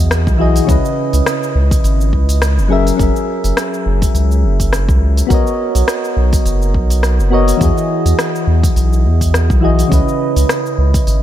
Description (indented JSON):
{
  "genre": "sunset chillout",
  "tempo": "104 BPM",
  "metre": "4/4",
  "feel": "swing 56% on 16ths",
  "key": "C# dorian",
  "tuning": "A4 = 439 Hz",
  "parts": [
    { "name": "soft electric-piano-like synth keys", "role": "accompaniment", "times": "0.0-11.2 s", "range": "C#3 to E5", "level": "-17 LUFS", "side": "moving between left 6 dB and right 3 dB", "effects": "chorus, auto-pan, analog delay" },
    { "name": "round analog bass", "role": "bass", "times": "0.0-11.2 s", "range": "F#1 to E2", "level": "-13 LUFS", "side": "equal", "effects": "none" },
    { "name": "deep house drum kit", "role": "drums", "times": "0.1-11.2 s", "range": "hi-hat, rim click, shaker", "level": "-22 LUFS", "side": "left 1 dB", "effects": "studio reverb" },
    { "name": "electronic kick drum", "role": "drums", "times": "0.3-11.0 s", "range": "none", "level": "-16 LUFS", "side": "equal", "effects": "studio reverb" }
  ],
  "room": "digital ambience",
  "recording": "none",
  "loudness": "-11 LUFS",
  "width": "side -12 dB against mid",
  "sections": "0.0-11.2 A section",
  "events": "none",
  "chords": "0.0 Emaj7; 0.7 C#m9; 2.7 F#7; 5.3 Bmaj9; 7.6 Emaj7; 9.9 C#m9"
}